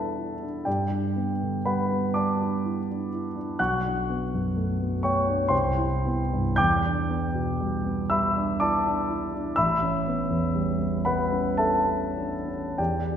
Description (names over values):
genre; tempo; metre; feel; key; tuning
classical, impressionist solo piano; 47-64 BPM; 3/4; rubato; unclear; A4 = 442 Hz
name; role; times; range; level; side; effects
warm concert grand piano; solo; 0.0-13.2 s; A1 to G6; -23 LUFS; equal; none
room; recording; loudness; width
wet scoring stage reverb, RT60 1.8 s; recorded in a church or concert hall; -23 LUFS; side -8 dB against mid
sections
0.0-13.2 A section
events
none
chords
0.0 Em7; 0.7 Gmaj7; 3.6 Bm9; 5.5 Cmaj7; 6.6 Em7; 9.6 A9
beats
| 0.66 1.66 2.63 | 3.59 4.56 5.52 | 6.59 7.59 8.60 | 9.56 10.53 11.59 | 12.78